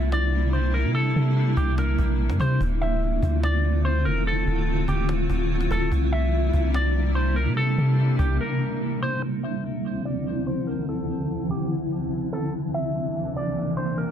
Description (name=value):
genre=hip hop, atmospheric cloud-rap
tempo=145 BPM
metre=4/4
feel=half-time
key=D minor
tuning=A4 = 440 Hz
part: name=electric guitar with an envelope filter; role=melody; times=0.0-14.1 s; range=G4 to E5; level=-30 LUFS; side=equal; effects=vibrato effect, low-pass filter, ping-pong delay
part: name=granular cloud pad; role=sustained chords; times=0.0-14.1 s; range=C2 to F4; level=-26 LUFS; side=equal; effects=built-in reverb, low-pass filter
part: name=soft 808-style bass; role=bass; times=0.0-8.4 s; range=D1 to C3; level=-22 LUFS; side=equal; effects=none
part: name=cajon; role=drums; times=0.1-8.3 s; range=none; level=-34 LUFS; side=equal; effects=none
room=moderate studio reverb, RT60 0.6 s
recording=dense, heavily limited modern master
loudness=-22 LUFS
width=side -9 dB against mid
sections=0.0-9.2 A section; 9.2-14.1 B section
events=break 8.4-9.2; filter sweep 9.2-14.1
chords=0.0 C7; 2.6 Dm7; 5.9 C7; 9.2 Dm7; 12.5 C7